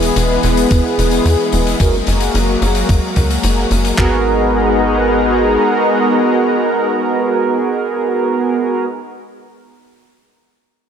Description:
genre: synthwave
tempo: 110 BPM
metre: 4/4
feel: straight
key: G# minor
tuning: A4 = 439 Hz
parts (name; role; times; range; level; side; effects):
- analog string pad; sustained chords; 0.0-8.9 s; E3 to A#4; -16 LUFS; left 2 dB; ensemble chorus, sidechain pumping
- analog synth brass; stabs; 0.0-8.9 s; B3 to B4; -17 LUFS; right 5 dB; chorus, tape echo
- tight sequencer bass; bass; 0.0-5.6 s; E1 to E2; -17 LUFS; equal; none
- hi-hat; drums; 0.0-4.0 s; none; -22 LUFS; left 3 dB; none
- gated 80s digital drum machine; drums; 0.7-4.1 s; handclaps, kick drum; -14 LUFS; equal; gated reverb
room: moderate lush hall reverb, RT60 2.2 s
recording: none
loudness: -12 LUFS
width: side -8 dB against mid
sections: 0.0-4.0 A section; 4.0-8.3 B section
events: none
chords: 0.0 E; 1.8 F#add9; 4.0 G#m9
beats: 0.16 0.71 1.25 | 1.80 2.35 2.89 3.44 | 3.98 4.53 5.07 5.62 | 6.16 6.71 7.25 7.80

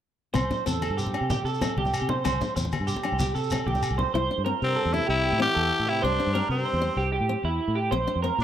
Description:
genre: highlife guitar band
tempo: 127 BPM (dotted quarters)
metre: 12/8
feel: straight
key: C mixolydian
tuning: A4 = 439 Hz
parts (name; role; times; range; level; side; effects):
- fingerpicked steel-string acoustic guitar; accompaniment; 0.3-8.4 s; C4 to E4; -32 LUFS; left 6 dB; none
- electric guitar through a small old amp; arpeggios; 0.3-8.4 s; E4 to C5; -28 LUFS; right 5 dB; analog chorus
- fingered electric bass; bass; 0.3-8.4 s; Bb1 to C3; -29 LUFS; equal; none
- shekere; percussion; 0.3-3.9 s; none; -34 LUFS; left 2 dB; none
- agogo bells; percussion; 0.4-4.0 s; none; -36 LUFS; left 4 dB; none
- congas; percussion; 0.4-4.1 s; none; -32 LUFS; left 2 dB; none
- raspy tenor saxophone; melody; 4.6-8.4 s; C4 to G4; -26 LUFS; left 2 dB; none
- mellow trombone; second line; 4.6-8.4 s; G2 to E3; -34 LUFS; left 5 dB; none
room: light reverb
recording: none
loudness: -23 LUFS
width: side -10 dB against mid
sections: 0.4-4.1 A section; 4.1-8.4 B section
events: none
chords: 0.4 C5; 4.1 C; 7.9 Bb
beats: | 0.35 0.83 1.30 1.77 | 2.25 2.72 3.19 3.67 | 4.14 4.61 5.08 5.56 | 6.03 6.50 6.97 7.45 | 7.92 8.39

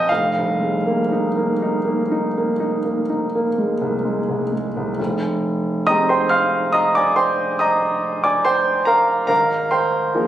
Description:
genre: classical, impressionist solo piano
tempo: 59-73 BPM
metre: 5/4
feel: rubato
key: unclear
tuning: A4 = 439 Hz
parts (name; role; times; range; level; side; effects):
- clear concert grand piano; solo; 0.0-10.3 s; F1 to F6; -17 LUFS; right 1 dB; none
room: moderate recital hall reverb, RT60 1.6 s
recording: recorded on a phone in the room, club reverb, compression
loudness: -17 LUFS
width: side -12 dB against mid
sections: 0.0-5.0 A section; 5.0-10.3 B section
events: none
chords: 0.1 Fm7; 5.0 Fm9; 9.3 Ab69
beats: | 0.09 1.11 2.11 3.10 4.05 | 4.99 5.88 6.75 7.61 8.46 | 9.30 10.13

